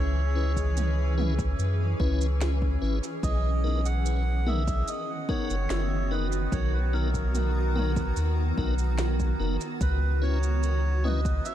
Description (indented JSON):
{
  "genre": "ambient dub",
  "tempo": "73 BPM",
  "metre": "4/4",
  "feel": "straight",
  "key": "unclear",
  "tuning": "A4 = 440 Hz",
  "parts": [
    { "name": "melodica", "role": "melody", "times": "0.0-11.5 s", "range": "A#4 to F#5", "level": "-35 LUFS", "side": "right 2 dB", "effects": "dub echo" },
    { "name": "granular cloud pad", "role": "sustained chords", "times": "0.0-11.5 s", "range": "D#3 to A#5", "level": "-33 LUFS", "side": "equal", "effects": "built-in reverb" },
    { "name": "soft dub sub bass", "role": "bass", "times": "0.0-11.4 s", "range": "F#1 to F#2", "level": "-25 LUFS", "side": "equal", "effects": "none" },
    { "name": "tonewheel organ", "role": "stabs", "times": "0.4-11.2 s", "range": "B3 to B4", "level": "-36 LUFS", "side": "left 5 dB", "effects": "overdrive, chorus vibrato, dub echo" },
    { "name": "electronic kick drum", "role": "drums", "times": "0.6-11.4 s", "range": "none", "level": "-31 LUFS", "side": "equal", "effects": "overdrive" },
    { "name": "organic electronic drum kit", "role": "drums", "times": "0.6-11.5 s", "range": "shaker, snare drum, toms", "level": "-38 LUFS", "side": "right 2 dB", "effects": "dub echo" }
  ],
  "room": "digital ambience",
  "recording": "none",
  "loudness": "-24 LUFS",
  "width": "side -11 dB against mid",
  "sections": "0.0-11.5 A section",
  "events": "none",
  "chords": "0.0 C#m7; 3.2 Bmaj7; 9.8 C#m7"
}